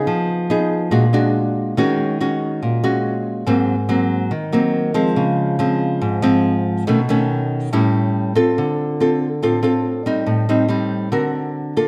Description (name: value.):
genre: bossa nova.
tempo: 141 BPM.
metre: 4/4.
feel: straight.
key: D minor from 8.6 s.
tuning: A4 = 442 Hz.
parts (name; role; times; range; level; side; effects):
nylon-string guitar; solo; 0.0-11.9 s; Ab2 to A#4; -18 LUFS; equal; none.
room: moderate recital hall reverb, RT60 1.6 s.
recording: none.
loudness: -19 LUFS.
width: mono.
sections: 0.0-8.6 A section; 8.6-11.9 B section.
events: none.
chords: 0.1 Fm7b5; 0.9 Bbaug7; 1.8 Ebm7; 3.5 Ab9; 5.2 Dbmaj7; 6.9 B9; 7.7 A7; 8.6 Dm7; 10.3 Am7b5; 11.1 D7alt.